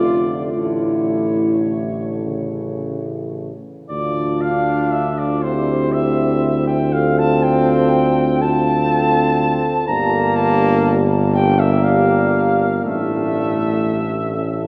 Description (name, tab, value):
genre	classical, hymn-like piece for brass band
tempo	35-42 BPM (dotted quarters)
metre	6/8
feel	rubato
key	unclear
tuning	A4 = 440 Hz
part	mellow flugelhorn	melody	0.0-14.7 s	C5 to Bb5	-24 LUFS	equal	none
part	dark French horn section	second line	0.0-14.7 s	E4 to A4	-25 LUFS	equal	none
part	clear euphonium	accompaniment	0.0-14.7 s	A3 to F4	-28 LUFS	equal	none
part	warm trombone	accompaniment	0.0-14.7 s	C#3 to D4	-25 LUFS	equal	none
part	warm tuba	bass	0.0-14.7 s	F1 to D2	-22 LUFS	equal	none
room	wet cathedral reverb, RT60 4.8 s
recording	heard from further back in the room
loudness	-18 LUFS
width	mono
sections	0.0-3.9 A section; 3.9-14.7 B section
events	none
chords	0.0 Dm/F; 0.6 A; 3.9 Dm; 5.4 C/D; 6.9 F/D; 9.9 Gm; 12.8 Asus4